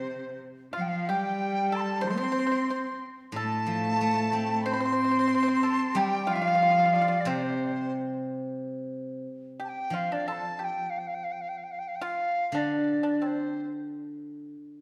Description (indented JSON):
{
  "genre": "chinese traditional, Chinese chamber ensemble",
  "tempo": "91 BPM",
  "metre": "2/4",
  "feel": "rubato",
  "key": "C zhi mode",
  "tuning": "A4 = 439 Hz",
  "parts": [
    { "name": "bright reedy large dizi", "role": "melody", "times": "0.0-13.7 s", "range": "C5 to C6", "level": "-31 LUFS", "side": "equal", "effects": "none" },
    { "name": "bright cello", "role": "second line", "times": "0.0-7.9 s", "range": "C3 to C4", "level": "-32 LUFS", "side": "equal", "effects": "none" },
    { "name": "bright dizi", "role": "second line", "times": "0.0-7.9 s", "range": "C5 to C6", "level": "-38 LUFS", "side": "equal", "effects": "none" },
    { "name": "pipa", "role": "second line", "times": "0.0-13.7 s", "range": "C4 to C5", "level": "-37 LUFS", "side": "equal", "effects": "none" },
    { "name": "steel-string zither", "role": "accompaniment", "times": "3.3-14.5 s", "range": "A2 to C4", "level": "-35 LUFS", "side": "equal", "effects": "none" }
  ],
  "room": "wet scoring stage reverb, RT60 1.5 s",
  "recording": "dark, warm production",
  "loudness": "-28 LUFS",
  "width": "mono",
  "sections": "0.0-8.6 A section; 8.6-14.8 B section",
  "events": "none",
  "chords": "none"
}